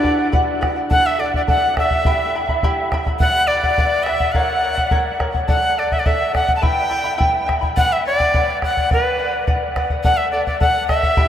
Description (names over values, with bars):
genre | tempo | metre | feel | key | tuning
andean folk, Andean ensemble | 105 BPM | 2/4 | straight | unclear | A4 = 440 Hz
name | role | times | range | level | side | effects
breathy bright quena | melody | 0.0-11.3 s | B4 to A5 | -20 LUFS | equal | none
breathy bright pan flute | second line | 0.0-11.3 s | D4 to A5 | -23 LUFS | left 1 dB | none
charango | accompaniment | 0.0-11.3 s | E4 to B5 | -22 LUFS | equal | none
bombo | percussion | 0.0-11.3 s | none | -21 LUFS | equal | none
room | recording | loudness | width
wet huge ambient reverb, RT60 7.6 s | in a vast, echoing space, faint mains hum | -15 LUFS | side -10 dB against mid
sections
0.9-10.0 A section; 10.0-11.3 A section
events
none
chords
0.0 Bm; 0.9 D; 2.1 Em; 3.2 Bm; 4.3 F#; 5.5 D; 6.6 Em; 7.8 Bm; 10.0 D